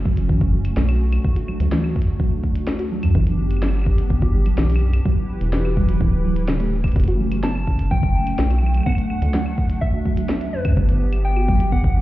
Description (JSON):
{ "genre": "IDM", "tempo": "126 BPM", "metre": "4/4", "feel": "straight", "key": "unclear", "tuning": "A4 = 440 Hz", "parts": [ { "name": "hollow soft pad", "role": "sustained chords", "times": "0.0-12.0 s", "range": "E3 to B4", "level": "-29 LUFS", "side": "left 2 dB", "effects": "ensemble chorus" }, { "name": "rubbery square bass", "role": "bass", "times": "0.0-12.0 s", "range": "D1 to F#2", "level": "-20 LUFS", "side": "equal", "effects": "none" }, { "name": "soft round pluck", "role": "arpeggios", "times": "0.1-12.0 s", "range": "F#2 to F#4", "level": "-26 LUFS", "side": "right 2 dB", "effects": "analog chorus, ping-pong delay" }, { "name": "electronic kick drum", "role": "drums", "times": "0.1-11.9 s", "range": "none", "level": "-20 LUFS", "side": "equal", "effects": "none" }, { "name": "glitchy drum kit", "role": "drums", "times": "0.2-11.7 s", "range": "claves, hi-hat, snare drum", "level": "-30 LUFS", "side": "left 1 dB", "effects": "none" }, { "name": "soft struck synth lead", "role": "melody", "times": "7.4-12.0 s", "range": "B4 to A5", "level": "-28 LUFS", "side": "left 2 dB", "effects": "chorus, tape echo" } ], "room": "light reverb", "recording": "heard muffled through a wall, club reverb, EQ", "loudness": "-17 LUFS", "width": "side -16 dB against mid", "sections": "0.0-12.0 A section", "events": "none", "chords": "0.0 F#m; 1.2 D; 3.1 G; 5.1 Emadd9; 7.0 F#m; 8.9 D; 10.8 G" }